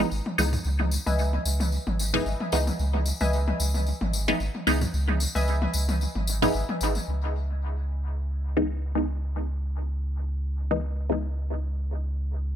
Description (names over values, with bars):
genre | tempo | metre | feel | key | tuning
dub techno | 112 BPM | 4/4 | swing 55% on 16ths | C# minor | A4 = 440 Hz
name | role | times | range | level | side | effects
filtered dub chord stab | stabs | 0.0-11.3 s | E3 to D#4 | -28 LUFS | equal | phaser, dub echo
soft dub sub bass | bass | 0.0-12.6 s | G#1 to C#2 | -26 LUFS | equal | none
tambourine | percussion | 0.0-7.1 s | none | -34 LUFS | left 2 dB | none
electronic toms | percussion | 0.3-7.1 s | none | -33 LUFS | left 1 dB | dub echo
warbly dusty pluck | riff | 1.1-6.6 s | B4 to G#5 | -34 LUFS | left 2 dB | chorus, dub echo
room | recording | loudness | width
light reverb, digital ambience | echo-heavy mix | -24 LUFS | side -10 dB against mid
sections
0.0-7.1 A section; 7.1-12.6 B section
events
none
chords
0.0 C#m9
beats
0.12 | 0.65 1.19 1.72 2.26 | 2.79 3.33 3.87 4.40 | 4.94 5.47 6.01 6.54 | 7.08 7.62 8.15 8.69 | 9.22 9.76 10.29 10.83 | 11.37 11.90 12.44